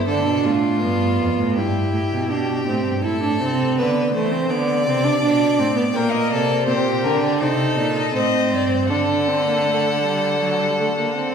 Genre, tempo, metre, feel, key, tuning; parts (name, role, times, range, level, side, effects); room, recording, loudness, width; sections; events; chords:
classical, baroque-style fugue for string quartet; 81 BPM; 4/4; straight; A4 = 439 Hz
rich violin; melody; 0.0-0.1, 5.9-11.3 s; Bb4 to G5; -24 LUFS; left 6 dB
bright violin; second line; 0.0-11.3 s; F4 to D5; -24 LUFS; left 3 dB
warm viola; accompaniment; 0.0-11.3 s; F#3 to E4; -21 LUFS; right 3 dB
rich cello; bass; 0.0-11.3 s; F2 to E3; -22 LUFS; right 1 dB
wet scoring stage reverb, RT60 1.7 s; heard from further back in the room; -17 LUFS; side -7 dB against mid
0.1-11.3 A section
0.1 Bm7b5; 1.6 Em/G; 3.0 Am; 4.5 D5; 6.0 Gm/Bb; 7.4 Adim; 8.9 D